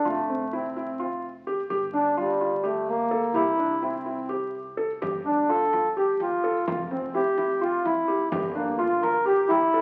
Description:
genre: contemporary instrumental, chamber music in an uneven meter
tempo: 255 BPM (eighths)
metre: 7/8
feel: straight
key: G dorian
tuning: A4 = 441 Hz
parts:
  - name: mellow accordion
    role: melody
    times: 0.0-9.8 s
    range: G3 to Bb4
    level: -26 LUFS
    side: equal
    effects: none
  - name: felt-muted upright piano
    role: arpeggios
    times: 0.1-9.8 s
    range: C4 to A4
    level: -32 LUFS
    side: equal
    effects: none
  - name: upright bass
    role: bass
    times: 0.1-9.8 s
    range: F1 to C2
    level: -45 LUFS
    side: equal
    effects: none
  - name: frame drum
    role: percussion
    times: 5.0-9.7 s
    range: none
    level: -39 LUFS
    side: equal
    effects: none
room: wet recital hall reverb, RT60 1.4 s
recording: very old 78 rpm record, vinyl crackle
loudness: -26 LUFS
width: mono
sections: 0.0-9.8 A section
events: none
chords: 0.1 Fmaj7; 1.7 Gm7; 3.3 C; 5.0 G5; 6.7 F5; 8.3 G5

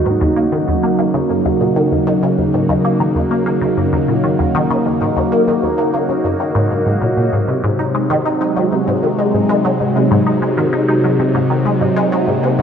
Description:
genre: ambient, sequencer-driven space music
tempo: 97 BPM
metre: 4/4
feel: straight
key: Eb dorian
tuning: A4 = 440 Hz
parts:
  - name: phased analog pad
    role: sustained chords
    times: 0.0-12.6 s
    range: C3 to Gb4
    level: -15 LUFS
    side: equal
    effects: phaser, chorus
  - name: resonant blip pluck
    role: riff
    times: 0.1-12.6 s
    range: Eb2 to Eb4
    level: -17 LUFS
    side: left 1 dB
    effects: phaser, ensemble chorus, ping-pong delay
room: wet lush hall reverb, RT60 2.9 s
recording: none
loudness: -13 LUFS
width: side -7 dB against mid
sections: 0.0-12.6 A section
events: none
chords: 0.0 Ebm7; 7.3 Ab7

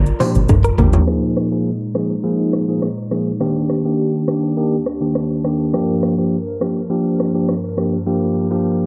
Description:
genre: afrobeats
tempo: 103 BPM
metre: 4/4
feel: straight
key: unclear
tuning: A4 = 438 Hz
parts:
  - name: soft round pluck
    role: melody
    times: 0.0-0.5 s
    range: none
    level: barely audible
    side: none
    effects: none
  - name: hollow soft pad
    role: sustained chords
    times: 0.0-8.9 s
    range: Eb2 to Bb4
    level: -27 LUFS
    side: equal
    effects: chorus
  - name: direct-recorded clean electric guitar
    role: riff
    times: 0.0-0.9 s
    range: Bb4 to C5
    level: -27 LUFS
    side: equal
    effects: analog delay
  - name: punchy sub bass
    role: bass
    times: 0.0-1.0 s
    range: F1 to Ab1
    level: -20 LUFS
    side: equal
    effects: none
  - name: deep house drum kit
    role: drums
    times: 0.1-8.1 s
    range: hi-hat, kick drum, rim click, shaker, toms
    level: -22 LUFS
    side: equal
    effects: cassette tape
  - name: bell-like tine electric piano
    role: accompaniment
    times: 0.2-8.9 s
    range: Eb3 to Ab4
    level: -20 LUFS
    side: equal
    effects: none
  - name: bongos and congas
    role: percussion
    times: 0.2-1.1 s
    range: none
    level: -24 LUFS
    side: equal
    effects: none
room: light reverb, digital ambience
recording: home recording on cassette, low-pass filter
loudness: -18 LUFS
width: mono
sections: 0.0-1.1 A section; 1.1-8.9 B section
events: drum fill 0.0-1.1; filter sweep 1.1-8.9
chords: 0.0 Gm7; 1.1 Bb7sus4; 3.4 Ebmaj7; 5.7 Gm7

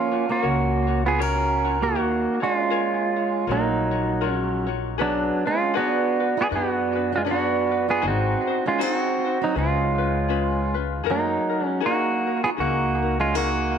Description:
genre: Hawaiian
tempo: 79 BPM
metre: 4/4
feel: swing 60% on 8ths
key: F# major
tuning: A4 = 440 Hz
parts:
  - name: pedal steel guitar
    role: melody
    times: 0.0-13.8 s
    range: F#3 to A#4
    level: -22 LUFS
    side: right 2 dB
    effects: tape echo
  - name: fingerpicked plugged-in steel-string acoustic guitar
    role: second line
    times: 0.0-13.8 s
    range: A#3 to F#4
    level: -29 LUFS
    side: right 10 dB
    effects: none
  - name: ukulele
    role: accompaniment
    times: 0.0-13.8 s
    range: C#4 to C#5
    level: -29 LUFS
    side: left 14 dB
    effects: none
  - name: upright bass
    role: bass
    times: 0.4-13.8 s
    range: G#1 to F#2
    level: -28 LUFS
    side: left 2 dB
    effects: none
room: moderate plate reverb, RT60 3.7 s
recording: 1960s-style stereo with parts hard left and right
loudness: -20 LUFS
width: side -7 dB against mid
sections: 0.0-13.8 A section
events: none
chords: 0.0 F#maj7; 2.0 D#m9; 5.0 Bm6; 8.0 G#7; 9.6 C#7; 11.1 F#69

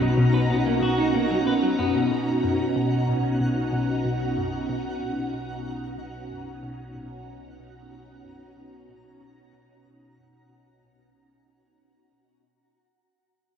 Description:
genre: ambient, sequencer-driven space music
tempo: 93 BPM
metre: 4/4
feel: straight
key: B major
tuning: A4 = 441 Hz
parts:
  - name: phased string machine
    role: sustained chords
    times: 0.0-12.4 s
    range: B2 to A#5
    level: -25 LUFS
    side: equal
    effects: ensemble chorus, phaser, cassette tape
  - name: clean electric guitar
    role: arpeggios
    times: 0.0-2.1 s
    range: B2 to B4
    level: -28 LUFS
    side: equal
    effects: auto-pan, cassette tape, analog delay
  - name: fat analog bass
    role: bass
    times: 0.0-12.4 s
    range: B1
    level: -40 LUFS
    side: equal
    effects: none
  - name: twinkling granular texture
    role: texture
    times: 0.0-12.5 s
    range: F#4 to A#5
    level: -32 LUFS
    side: right 1 dB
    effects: built-in reverb, cassette tape
  - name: hollow square pluck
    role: riff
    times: 0.2-12.3 s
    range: F#2 to B2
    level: -30 LUFS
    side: left 1 dB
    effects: chorus, cassette tape, analog delay
room: wet lush hall reverb, RT60 2.5 s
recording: home recording on cassette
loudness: -22 LUFS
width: side -8 dB against mid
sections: 0.0-12.4 A section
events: fade-out on synth arpeggio sound 0.0-12.4; fade-out on analog synth bass 0.0-12.4; fade-out 0.0-12.4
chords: 0.0 Bmaj7

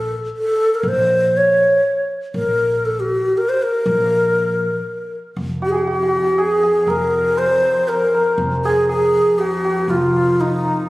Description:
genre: persian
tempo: 119 BPM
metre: 3/4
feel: straight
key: Bb avaz esfahan, F dastgah shur from 5.4 s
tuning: A4 = 440 Hz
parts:
  - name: breathy low ney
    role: melody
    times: 0.0-10.9 s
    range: Eb4 to Db5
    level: -16 LUFS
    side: equal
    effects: none
  - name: upright bass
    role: bass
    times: 0.0-10.7 s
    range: F1 to Bb1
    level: -25 LUFS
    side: equal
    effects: none
  - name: warm double bass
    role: drone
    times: 5.4-10.9 s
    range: F2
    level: -28 LUFS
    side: equal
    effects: none
  - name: santur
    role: second line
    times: 5.6-10.9 s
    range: Eb4 to C5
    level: -22 LUFS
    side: right 1 dB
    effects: none
room: moderate recital hall reverb, RT60 1.6 s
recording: recorded on a phone in the room, club reverb, compression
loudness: -15 LUFS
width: side -18 dB against mid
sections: 0.0-5.4 A section; 5.4-10.9 B section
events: none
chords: none

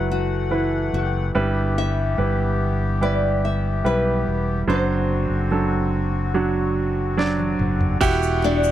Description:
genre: pop ballad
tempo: 72 BPM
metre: 4/4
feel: straight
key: unclear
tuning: A4 = 438 Hz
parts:
  - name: nylon-string guitar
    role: melody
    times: 0.0-8.7 s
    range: D4 to E5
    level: -26 LUFS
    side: left 3 dB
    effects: none
  - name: clear baby grand piano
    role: accompaniment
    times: 0.0-8.7 s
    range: G2 to D5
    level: -23 LUFS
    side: right 4 dB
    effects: none
  - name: accordion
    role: sustained chords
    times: 0.0-8.7 s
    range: D3 to F#5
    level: -30 LUFS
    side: left 8 dB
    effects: stereo widening
  - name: fingered electric bass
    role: bass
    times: 0.0-8.7 s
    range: E1 to B1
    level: -23 LUFS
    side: left 1 dB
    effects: none
  - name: smooth R&B drum kit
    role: drums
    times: 7.2-8.6 s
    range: crash cymbal, kick drum, ride cymbal, snare drum, toms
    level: -26 LUFS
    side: equal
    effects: none
  - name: egg shaker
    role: percussion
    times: 8.0-8.7 s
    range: none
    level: -37 LUFS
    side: left 24 dB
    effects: none
room: little or no reverb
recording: dry, close 1970s-style studio recording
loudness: -19 LUFS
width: side -12 dB against mid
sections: 0.0-8.0 A section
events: drum fill 7.2-8.0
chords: 0.0 A7sus2/F#; 1.3 G6; 4.7 D7/F#; 8.0 Emadd9

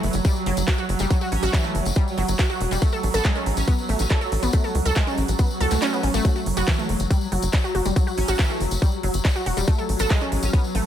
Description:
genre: psychedelic trance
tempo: 140 BPM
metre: 4/4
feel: straight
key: unclear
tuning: A4 = 440 Hz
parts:
  - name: pulsing gated texture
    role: sustained chords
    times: 0.0-10.9 s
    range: F#3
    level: -29 LUFS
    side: right 2 dB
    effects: chorus, built-in reverb, sidechain pumping
  - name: tight sequencer bass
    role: bass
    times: 0.0-10.8 s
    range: E1 to C#2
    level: -24 LUFS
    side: equal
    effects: none
  - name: big-room dance drum kit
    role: drums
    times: 0.0-10.8 s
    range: handclaps, hi-hat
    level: -30 LUFS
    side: right 1 dB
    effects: overdrive
  - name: tambourine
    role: percussion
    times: 0.1-10.7 s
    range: none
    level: -34 LUFS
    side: left 4 dB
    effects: none
  - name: wide unison pluck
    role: riff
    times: 0.2-10.8 s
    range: E3 to A4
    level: -26 LUFS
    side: right 1 dB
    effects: auto-pan, sidechain pumping, digital delay
  - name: electronic kick drum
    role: drums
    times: 0.2-10.6 s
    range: none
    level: -20 LUFS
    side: equal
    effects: none
  - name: metallic wobble bass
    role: second line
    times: 1.3-10.6 s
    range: B3 to C#4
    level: -37 LUFS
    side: right 2 dB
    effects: none
  - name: swell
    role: sound effects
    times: 5.5-6.2 s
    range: none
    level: -33 LUFS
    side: equal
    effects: none
room: light reverb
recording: none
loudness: -19 LUFS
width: side -10 dB against mid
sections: 0.0-10.9 A section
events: swell 5.5-6.2; kick drops out 5.8-6.2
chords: 0.0 Emadd9 (rootless); 2.8 A6; 6.2 N.C.; 9.7 A5

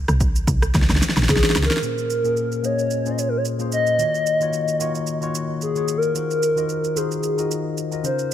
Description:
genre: amapiano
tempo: 111 BPM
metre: 4/4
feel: swing 55% on 16ths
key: Bb minor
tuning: A4 = 440 Hz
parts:
  - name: woody log drum bass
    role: bass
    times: 0.0-1.7 s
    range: Bb1 to Db2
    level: -19 LUFS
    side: equal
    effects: none
  - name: deep house drum kit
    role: drums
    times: 0.1-8.3 s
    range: kick drum, rim click, shaker, snare drum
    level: -22 LUFS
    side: equal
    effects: overdrive
  - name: hollow clarinet-like synth lead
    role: melody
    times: 1.3-8.3 s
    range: Ab4 to Eb5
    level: -22 LUFS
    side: left 1 dB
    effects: chorus, ping-pong delay
  - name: tine electric piano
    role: accompaniment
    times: 1.8-8.3 s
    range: Bb2 to Eb5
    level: -25 LUFS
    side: left 3 dB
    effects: phaser
room: little or no reverb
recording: none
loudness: -19 LUFS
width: side -10 dB against mid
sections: 0.0-1.8 A section; 1.8-8.3 B section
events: drop 0.0-1.8; drum fill 0.7-1.8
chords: 0.0 N.C.; 1.8 Bbm9; 4.0 Ebm9; 6.2 Ab13/Eb

